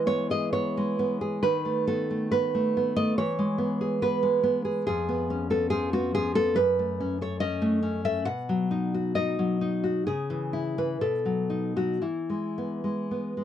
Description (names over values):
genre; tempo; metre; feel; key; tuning
romantic piece for solo classical guitar; 55-72 BPM; 2/4; rubato; E major; A4 = 440 Hz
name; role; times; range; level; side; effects
nylon-string guitar; solo; 0.0-13.4 s; E#2 to F#5; -24 LUFS; equal; none
room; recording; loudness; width
light reverb; dry, close 1970s-style studio recording; -24 LUFS; side -10 dB against mid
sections
0.0-13.4 A section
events
none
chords
0.0 E; 1.4 B7/D#; 3.2 E; 4.9 C#7/E#; 6.6 F#m; 8.3 B; 10.1 C#m; 11.0 B7; 12.0 E